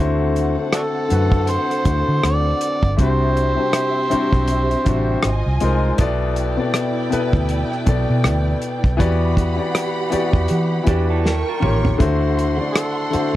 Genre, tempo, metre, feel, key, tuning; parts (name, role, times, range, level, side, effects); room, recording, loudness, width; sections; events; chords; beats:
lush 1970s-style soul; 80 BPM; 4/4; swing 58% on 16ths; A4 = 440 Hz
warm studio string section; second line; 0.0-13.4 s; C4 to C#6; -27 LUFS; right 3 dB
warm concert grand piano; accompaniment; 0.0-13.4 s; B2 to D5; -21 LUFS; left 3 dB
vintage muted fingered electric bass; bass; 0.0-13.2 s; G1 to E3; -20 LUFS; equal
warm soul drum kit; drums; 0.4-13.3 s; hi-hat, kick drum, rim click, snare drum, toms; -19 LUFS; equal
overdriven harmonica; melody; 0.7-5.6, 12.7-13.4 s; D4 to D5; -23 LUFS; right 1 dB
electric guitar through a small old amp; riff; 10.9-12.0 s; D4 to A#4; -29 LUFS; right 7 dB; spring reverb
small room ambience; dry, close 1970s-style studio recording; -16 LUFS; side -14 dB against mid
0.0-13.4 A section
drum fill 11.3-12.0
0.0 D9; 3.0 Cmaj9#11; 5.2 G#69; 6.0 G69/B; 9.0 Em9; 11.3 D#9; 12.0 D9
0.73 1.48 2.23 | 2.98 3.74 4.49 5.24 | 5.99 6.75 7.50 8.25 | 9.00 9.76 10.51 11.26 | 12.01 12.77